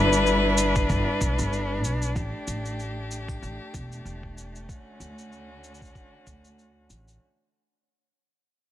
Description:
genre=folktronica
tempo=95 BPM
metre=4/4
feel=swing 56% on 16ths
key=unclear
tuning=A4 = 439 Hz
part: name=dark string quartet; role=sustained chords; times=0.0-7.2 s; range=D3 to B4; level=-26 LUFS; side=left 1 dB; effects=none
part: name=upright bass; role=bass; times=0.0-7.2 s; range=E1 to D2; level=-29 LUFS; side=equal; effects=none
part: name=cabasa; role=drums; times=0.1-7.2 s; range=none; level=-34 LUFS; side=equal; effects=none
part: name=electronic kick drum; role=drums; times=0.8-6.4 s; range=none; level=-30 LUFS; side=equal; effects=none
room=light reverb, digital ambience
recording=none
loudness=-23 LUFS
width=side -12 dB against mid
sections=0.0-7.2 A section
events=fade-out 0.0-7.2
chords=0.0 G6; 2.2 A7sus4; 4.7 Dmaj7

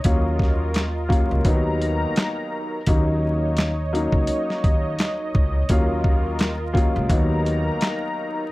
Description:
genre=hip hop, boom-bap hip-hop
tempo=85 BPM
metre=4/4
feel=swing 57% on 16ths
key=unclear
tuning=A4 = 440 Hz
part: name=dark upright piano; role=accompaniment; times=0.0-8.4 s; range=Eb2 to F4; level=-25 LUFS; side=left 1 dB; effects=cassette tape, high-pass filter, low-pass filter
part: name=warm analog pad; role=sustained chords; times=0.0-8.5 s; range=D#4 to A#5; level=-29 LUFS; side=equal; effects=chorus, high-pass filter, low-pass filter
part: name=upright bass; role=bass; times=0.0-7.7 s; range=Db2 to Eb2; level=-24 LUFS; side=equal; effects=none
part: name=boom bap sampler-style drum kit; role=drums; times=0.0-8.0 s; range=handclaps, hi-hat, kick drum, snare drum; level=-21 LUFS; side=equal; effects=none
room=light reverb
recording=vinyl crackle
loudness=-19 LUFS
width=side -19 dB against mid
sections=0.0-8.5 A section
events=none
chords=0.0 Gbmaj7/Eb; 1.5 Bmaj7/D#; 2.9 Ebm7; 5.7 Gbmaj7/Eb; 7.1 Bmaj7/D#

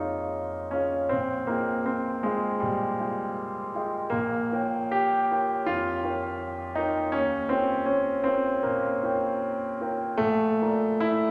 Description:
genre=classical, impressionist solo piano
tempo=79 BPM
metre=4/4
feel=uneven beats, rubato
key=Bb dorian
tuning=A4 = 441 Hz
part: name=warm grand piano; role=solo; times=0.0-11.3 s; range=Bb1 to Bb5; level=-27 LUFS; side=equal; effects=none
room=wet scoring stage reverb, RT60 2.1 s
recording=none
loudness=-27 LUFS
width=mono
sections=0.0-11.3 A section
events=none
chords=0.0 Bbm7; 1.1 Fm9/Bb; 4.1 Bbm6; 7.1 Eb9; 10.2 Bbmaj7

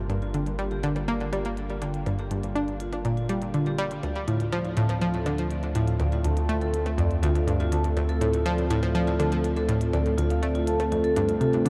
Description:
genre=ambient, sequencer-driven space music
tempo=122 BPM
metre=4/4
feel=straight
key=unclear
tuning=A4 = 440 Hz
part: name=sweeping resonant pad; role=sustained chords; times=0.0-11.7 s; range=D3 to Bb4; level=-33 LUFS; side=equal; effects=chorus
part: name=vibraphone with medium mallets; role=arpeggios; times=0.0-11.7 s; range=F4 to A5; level=-35 LUFS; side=equal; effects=delay
part: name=analog pluck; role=riff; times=0.0-11.7 s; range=D2 to D4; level=-29 LUFS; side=equal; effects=chorus, delay
part: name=warm sub bass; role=bass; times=0.0-11.7 s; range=G1 to D2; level=-32 LUFS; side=equal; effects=none
part: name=electronic hi-hat and percussion blips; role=percussion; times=0.1-11.7 s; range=none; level=-45 LUFS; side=equal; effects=delay
room=moderate huge ambient reverb, RT60 7.7 s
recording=dark, warm production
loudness=-26 LUFS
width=mono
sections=0.0-11.7 A section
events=fade-in on vibraphone 0.0-11.7; fade-in on analog synth pad 0.0-11.7; fade-in on drum 0.0-11.7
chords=0.0 Gm7; 4.0 Dm7

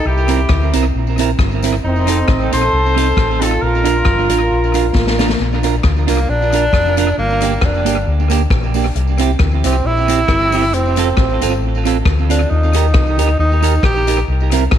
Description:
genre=ska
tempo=135 BPM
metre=4/4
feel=swing 55% on 8ths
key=Bb major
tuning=A4 = 440 Hz
part: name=warm horn section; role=melody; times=0.0-5.2 s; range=C4 to C5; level=-17 LUFS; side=equal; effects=none
part: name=fingered electric bass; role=bass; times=0.1-14.8 s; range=F1 to Eb2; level=-16 LUFS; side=left 1 dB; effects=none
part: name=semi-hollow electric guitar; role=accompaniment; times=0.3-14.6 s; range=Bb3 to Bb4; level=-19 LUFS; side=right 10 dB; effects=tape echo
part: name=swinging big-band drum kit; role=drums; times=0.3-14.8 s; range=hi-hat, kick drum, rim click, snare drum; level=-19 LUFS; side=left 2 dB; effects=tape echo
part: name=tambourine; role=percussion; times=0.3-14.6 s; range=none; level=-36 LUFS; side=left 12 dB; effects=none
part: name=clear tenor saxophone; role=melody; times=6.1-14.3 s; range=Bb3 to G4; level=-18 LUFS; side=right 1 dB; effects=none
room=moderate echo chamber reverb, RT60 1.7 s, studio ambience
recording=1960s-style stereo with parts hard left and right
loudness=-12 LUFS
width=side -10 dB against mid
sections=0.0-5.4 A section; 5.4-14.8 B section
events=drum fill 5.0-5.4; tenor saxophone solo 5.4-14.8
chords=0.1 C7; 1.8 F7; 3.6 Bb; 7.2 Gm; 9.0 C; 10.7 F; 12.5 Eb; 14.3 C7

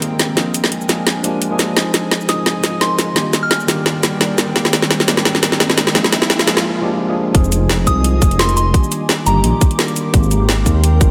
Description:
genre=liquid drum and bass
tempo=172 BPM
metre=4/4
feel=swing 54% on 16ths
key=F dorian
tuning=A4 = 440 Hz
part: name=tine electric piano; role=accompaniment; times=0.0-11.1 s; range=Eb3 to Bb4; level=-22 LUFS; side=equal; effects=overdrive, digital delay
part: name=glassy FM pad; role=sustained chords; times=0.0-11.1 s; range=Eb3 to D6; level=-28 LUFS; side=equal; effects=ensemble chorus, built-in reverb, sidechain pumping
part: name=garage drum kit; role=drums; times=0.0-11.1 s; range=hi-hat, shaker, snare drum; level=-18 LUFS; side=equal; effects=none
part: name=riser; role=sound effects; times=4.0-6.6 s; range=none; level=-29 LUFS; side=equal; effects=none
part: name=soft synth bell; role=melody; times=2.3-3.6, 7.9-9.5 s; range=Bb5 to F6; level=-24 LUFS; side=equal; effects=chorus, low-pass filter, tape echo
part: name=dark detuned saw bass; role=bass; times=7.3-11.1 s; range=F1 to Eb2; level=-17 LUFS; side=equal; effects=none
part: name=electronic kick drum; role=drums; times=7.3-11.1 s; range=none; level=-15 LUFS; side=equal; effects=none
room=moderate scoring stage reverb, RT60 1.8 s, digital ambience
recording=none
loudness=-15 LUFS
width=mono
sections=0.0-7.3 A section; 7.3-11.1 B section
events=build-up 0.0-7.3; drum fill 0.0-6.6; break 6.6-7.3; drop 7.3-11.1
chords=0.4 Bb7; 1.8 Fm7; 3.2 Ebmaj7; 4.6 Abmaj9; 6.0 Bb7; 7.3 Fm7; 8.7 Ebmaj7; 10.1 Abmaj9

